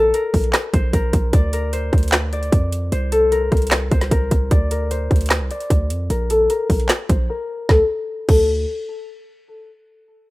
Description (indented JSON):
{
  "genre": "hip hop, trap",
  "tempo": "151 BPM",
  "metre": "4/4",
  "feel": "half-time",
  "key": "D minor",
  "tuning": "A4 = 440 Hz",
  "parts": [
    { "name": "concert harp", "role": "melody", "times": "0.0-8.5 s", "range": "A4 to D5", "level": "-21 LUFS", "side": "left 2 dB", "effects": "low-pass filter" },
    { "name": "hard-hitting 808-style bass", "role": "bass", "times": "0.0-8.7 s", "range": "Bb1 to F2", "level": "-21 LUFS", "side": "equal", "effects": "none" },
    { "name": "trap drum kit", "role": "drums", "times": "0.1-8.4 s", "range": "crash cymbal, handclaps, hi-hat, kick drum, snare drum", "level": "-18 LUFS", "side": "equal", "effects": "none" }
  ],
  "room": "little or no reverb",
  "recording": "rough home demo mix",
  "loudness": "-16 LUFS",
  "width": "side -20 dB against mid",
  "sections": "0.0-7.7 A section; 7.7-9.3 B section",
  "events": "filter sweep on harp 0.0-7.7; break 7.3-7.7",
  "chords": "0.0 Bbsus2; 1.3 Dm7; 2.9 Bbsus2/C; 4.5 D7(no3); 6.1 Bbsus2; 7.7 D5"
}